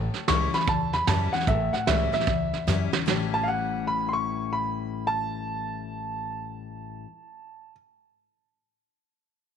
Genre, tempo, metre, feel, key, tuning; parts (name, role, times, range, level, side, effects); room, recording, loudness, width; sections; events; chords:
rockabilly; 150 BPM; 4/4; swing 64% on 8ths; A mixolydian; A4 = 439 Hz
picked steel-string acoustic guitar; accompaniment; 0.0-7.1 s; E2 to E4; -30 LUFS; left 9 dB
upright bass; bass; 0.0-7.0 s; A1 to F#2; -30 LUFS; equal
soft brush drum kit; drums; 0.1-3.2 s; hi-hat, kick drum, snare drum; -28 LUFS; right 6 dB
clear upright piano; melody; 0.3-7.7 s; E5 to C#6; -28 LUFS; right 1 dB
light reverb, studio ambience; 1960s-style stereo with parts hard left and right; -24 LUFS; side -7 dB against mid
0.0-3.1 A section; 3.1-6.3 B section
drum fill 2.7-3.1
0.0 A7